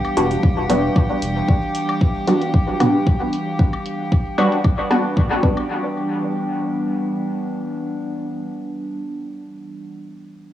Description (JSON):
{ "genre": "dub techno", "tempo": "114 BPM", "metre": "4/4", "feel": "straight", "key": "E minor", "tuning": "A4 = 440 Hz", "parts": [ { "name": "warbly tape-like pad", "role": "sustained chords", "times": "0.0-9.7 s", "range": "E3 to D4", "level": "-26 LUFS", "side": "equal", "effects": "chorus, built-in reverb, sidechain pumping" }, { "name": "electronic woodblock and toms", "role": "percussion", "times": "0.0-5.7 s", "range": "none", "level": "-28 LUFS", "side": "left 1 dB", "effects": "overdrive, sidechain pumping on perc, cassette tape, sidechain pumping on toms, dub echo" }, { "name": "metallic inharmonic drone", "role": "texture", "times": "0.0-5.7 s", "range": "G4", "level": "-28 LUFS", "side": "left 1 dB", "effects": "chorus, built-in reverb, sidechain pumping" }, { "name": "filtered dub chord stab", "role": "stabs", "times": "0.2-9.7 s", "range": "G3 to F#4", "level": "-20 LUFS", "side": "equal", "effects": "chorus, phaser, sidechain pumping, dub echo" }, { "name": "pure sine sub bass", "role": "bass", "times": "0.2-1.4 s", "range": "E1", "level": "-26 LUFS", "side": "equal", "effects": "tube saturation, sidechain pumping" }, { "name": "electronic hi-hat", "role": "drums", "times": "0.2-5.0 s", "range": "none", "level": "-35 LUFS", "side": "equal", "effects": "overdrive, low-pass filter on hats, cassette tape, low-pass filter on snare" }, { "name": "electronic kick drum", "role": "drums", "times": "0.4-5.5 s", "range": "none", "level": "-17 LUFS", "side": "equal", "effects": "cassette tape" }, { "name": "warbly dusty pluck", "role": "riff", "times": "0.7-0.9 s", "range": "B4 to G5", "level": "-31 LUFS", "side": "right 3 dB", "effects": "chorus, sidechain pumping, dub echo" } ], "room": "light reverb, digital ambience", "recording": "home recording on cassette, small room ambience", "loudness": "-18 LUFS", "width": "side -12 dB against mid", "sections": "0.0-5.7 A section; 5.7-9.9 B section", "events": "filter sweep on ambient pad 0.0-5.7", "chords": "0.0 Em7" }